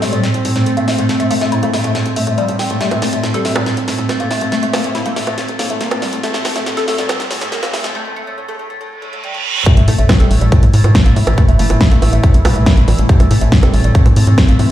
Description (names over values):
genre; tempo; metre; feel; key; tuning
psychedelic trance; 140 BPM; 4/4; straight; A phrygian; A4 = 439 Hz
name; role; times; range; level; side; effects
oud; melody; 0.0-14.5 s; A2 to Bb3; -19 LUFS; equal; phaser, sidechain pumping, low-pass filter, digital delay
evolving wavetable pad; sustained chords; 0.0-14.7 s; E3 to E4; -22 LUFS; right 1 dB; chorus, built-in reverb, sidechain pumping
woody wave-folded pluck; riff; 0.0-14.6 s; G3 to A4; -22 LUFS; moving between left 4 dB and right 3 dB; chorus, auto-pan, cassette tape, sidechain pumping, dub echo
tight sequencer bass; bass; 0.0-14.7 s; G1 to A2; -16 LUFS; equal; high-pass filter
big-room dance drum kit; drums; 0.0-14.7 s; bongos, hi-hat, snare drum; -20 LUFS; equal; high-pass filter on snare, high-pass filter on hats, high-pass filter on perc
riser, reverse cymbal and sub drop; sound effects; 5.6-11.4 s; none; -23 LUFS; right 1 dB; none
electronic kick drum; drums; 9.7-14.5 s; none; -11 LUFS; equal; none
room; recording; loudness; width
light reverb, digital ambience; played on a big sound system in a bare room, large studio reverb, high-pass filter; -11 LUFS; side -12 dB against mid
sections
0.0-9.7 A section; 9.7-14.7 B section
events
build-up 0.0-9.7; drum fill 0.0-7.9; filter sweep on oud 0.0-9.7; filter sweep 0.0-9.7; break 7.9-9.7; reverse cymbal 9.1-9.7; drop 9.7-14.7; impact 9.7-11.4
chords
0.0 A5